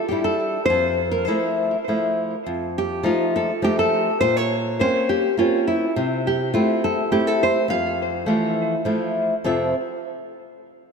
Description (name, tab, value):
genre	italian folk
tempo	103 BPM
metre	3/4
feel	straight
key	F major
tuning	A4 = 438 Hz
part	nylon-string guitar	melody	0.0-8.8 s	E4 to F5	-21 LUFS	equal	wide subtle chorus, ping-pong delay
part	flamenco guitar	accompaniment	0.1-9.7 s	F2 to E5	-22 LUFS	left 1 dB	none
room	wet plate reverb, RT60 3.1 s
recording	dreamy mix soaked in reverb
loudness	-19 LUFS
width	side -5 dB against mid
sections	0.0-2.5 A section; 2.5-9.5 B section; 9.5-10.9 C section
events	none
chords	0.0 Fmaj13 (rootless); 0.7 Fmaj7; 2.5 F7; 4.2 Bbmadd9; 5.9 C6; 7.7 Fmaj7